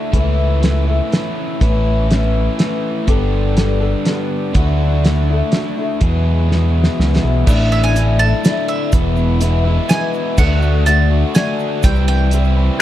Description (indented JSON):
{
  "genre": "folk rock and heartland rock",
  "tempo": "123 BPM",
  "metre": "3/4",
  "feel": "straight",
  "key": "A mixolydian",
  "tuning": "A4 = 440 Hz",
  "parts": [
    { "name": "picked old ladder-braced acoustic guitar", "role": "accompaniment", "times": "0.0-12.8 s", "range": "E2 to A4", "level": "-22 LUFS", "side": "left 7 dB", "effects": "none" },
    { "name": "biting overdriven guitar", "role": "riff", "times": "0.0-12.8 s", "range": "E2 to G#4", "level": "-21 LUFS", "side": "right 1 dB", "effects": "none" },
    { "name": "fingered electric bass", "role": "bass", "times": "0.1-12.7 s", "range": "E1 to E2", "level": "-15 LUFS", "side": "equal", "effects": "none" },
    { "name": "cloth-damped thuddy drum kit", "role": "drums", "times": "0.1-12.4 s", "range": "crash cymbal, hi-hat, kick drum, snare drum", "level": "-16 LUFS", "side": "equal", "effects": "none" },
    { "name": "egg shaker", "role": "percussion", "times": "7.5-12.5 s", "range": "none", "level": "-36 LUFS", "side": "right 8 dB", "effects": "none" },
    { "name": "bowl-back mandolin", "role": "melody", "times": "7.7-12.8 s", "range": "E5 to A5", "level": "-22 LUFS", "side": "right 4 dB", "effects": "none" }
  ],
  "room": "little or no reverb",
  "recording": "dark, warm production",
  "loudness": "-13 LUFS",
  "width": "side -13 dB against mid",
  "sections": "0.0-7.5 A section; 7.5-12.8 B section",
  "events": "drum fill 6.5-7.5",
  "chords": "0.1 Aadd9/C#; 1.6 Aadd9; 3.1 Gadd9; 4.6 Dadd9; 6.0 Eadd9; 7.5 Asus4; 8.9 E; 10.4 D; 11.8 C"
}